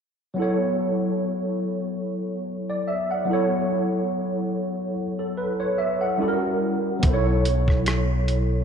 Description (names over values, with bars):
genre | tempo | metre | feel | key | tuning
R&B, neo-soul | 72 BPM | 4/4 | swing 55% on 16ths | unclear | A4 = 440 Hz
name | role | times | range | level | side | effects
overdriven tine electric piano | accompaniment | 0.3-8.6 s | F#3 to F#5 | -23 LUFS | equal | ensemble chorus
mellow fretless electric bass | bass | 7.0-8.6 s | B1 | -22 LUFS | equal | none
dusty soul sampler-style drum kit | drums | 7.0-8.5 s | hi-hat, kick drum, rim click | -24 LUFS | equal | none
room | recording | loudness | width
wet plate reverb, RT60 2.8 s | dreamy mix soaked in reverb | -22 LUFS | side -7 dB against mid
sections
0.4-8.6 A section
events
none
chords
0.4 F#m7; 6.2 F#7b9; 7.0 Bsus2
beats
| 0.37 1.20 2.03 2.87 | 3.70 4.53 5.37 6.20 | 7.03 7.87